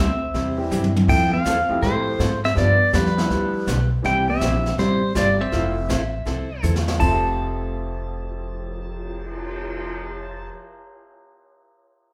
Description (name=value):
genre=country, western swing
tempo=162 BPM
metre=4/4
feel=swing 66% on 8ths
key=F major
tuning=A4 = 439 Hz
part: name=pedal steel guitar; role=melody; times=0.0-10.5 s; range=B4 to A5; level=-26 LUFS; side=equal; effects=none
part: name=hollow-body jazz guitar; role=second line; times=0.0-10.5 s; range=G3 to F4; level=-30 LUFS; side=equal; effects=none
part: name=picked steel-string acoustic guitar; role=accompaniment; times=0.0-10.6 s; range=C3 to A4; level=-32 LUFS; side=equal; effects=none
part: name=upright bass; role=bass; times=0.0-10.5 s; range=F1 to A2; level=-27 LUFS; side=equal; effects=none
part: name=jazz brush drum kit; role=drums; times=0.3-9.9 s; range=brushed snare drum, crash cymbal, cymbal swell, hi-hat, kick drum, snare drum, toms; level=-29 LUFS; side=equal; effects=none
part: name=clear upright piano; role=accompaniment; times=0.6-10.7 s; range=F2 to E5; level=-33 LUFS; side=equal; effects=none
room=wet large studio reverb, RT60 0.8 s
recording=band playing live in one room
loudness=-21 LUFS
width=mono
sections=0.0-7.0 A section; 7.0-10.0 B section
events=drum fill 0.7-1.1, 6.6-7.0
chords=0.0 C; 1.1 Fmaj7; 2.6 G7; 4.0 C; 5.5 Fmaj7